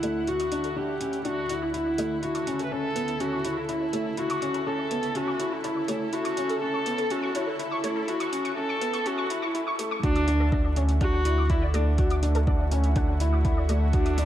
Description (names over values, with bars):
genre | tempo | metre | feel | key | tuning
piano and strings electronica | 123 BPM | 4/4 | straight | D major | A4 = 440 Hz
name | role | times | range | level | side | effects
dark viola | melody | 0.0-14.3 s | D4 to B4 | -29 LUFS | equal | low-pass filter, digital delay
lush unison pad | sustained chords | 0.0-14.3 s | D2 to F#5 | -35 LUFS | right 1 dB | chorus
warbly dusty pluck | arpeggios | 0.0-14.2 s | A4 to D6 | -35 LUFS | left 1 dB | ensemble chorus, vintage 12-bit sampler grit, sidechain pumping, digital delay
felt-muted upright piano | riff | 0.0-14.3 s | A3 to F#4 | -31 LUFS | left 2 dB | digital delay
electronic hi-hat | drums | 0.0-14.3 s | none | -39 LUFS | right 2 dB | overdrive, high-pass filter on hats
warm sub bass | bass | 10.0-14.3 s | D2 | -24 LUFS | equal | sidechain pumping
electronic kick drum | drums | 10.0-14.0 s | none | -26 LUFS | equal | overdrive
room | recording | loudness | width
moderate echo chamber reverb, RT60 1.8 s | dark, warm production, high-pass filter | -24 LUFS | side -12 dB against mid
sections
0.0-10.0 A section; 10.0-14.3 B section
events
build-up 0.0-10.0; filter sweep on synth arpeggio sound 0.0-10.0; filter sweep on viola 0.0-10.0; filter sweep 0.0-10.0; drop 10.0-14.3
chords
0.0 Dadd9; 2.2 F#m7/D; 10.0 Dadd9